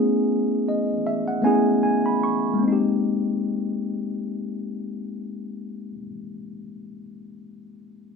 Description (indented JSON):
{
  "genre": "R&B",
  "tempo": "74-82 BPM",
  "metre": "4/4",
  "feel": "swing 56% on 16ths",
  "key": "Ab major",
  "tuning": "A4 = 437 Hz",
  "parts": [
    { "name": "tine electric piano", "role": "accompaniment", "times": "0.0-8.2 s", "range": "Ab3 to C#6", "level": "-22 LUFS", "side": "left 1 dB", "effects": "none" }
  ],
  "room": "moderate stone room reverb, RT60 0.9 s",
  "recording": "band playing live in one room",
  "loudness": "-21 LUFS",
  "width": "side -5 dB against mid",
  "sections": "0.0-2.6 A section; 2.6-5.9 B section",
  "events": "slowing down 0.0-2.6; tine electric piano fill 0.3-2.6",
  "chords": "0.0 Amaj9; 2.6 Abmaj9"
}